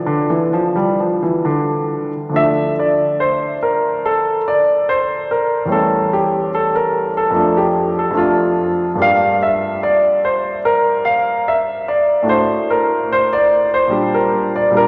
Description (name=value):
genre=classical, baroque-style suite movement for grand piano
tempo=72 BPM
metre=4/4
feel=rubato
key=D minor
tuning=A4 = 441 Hz
part: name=clear grand piano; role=solo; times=0.0-14.9 s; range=E2 to F5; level=-16 LUFS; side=equal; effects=none
room=wet cathedral reverb, RT60 5.2 s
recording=none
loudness=-16 LUFS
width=mono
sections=0.0-2.4 A section; 2.4-14.9 B section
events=none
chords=0.0 Dm; 5.7 A7/E; 7.4 Dm/F; 9.0 Gm; 12.3 D/A; 13.9 Gm/Bb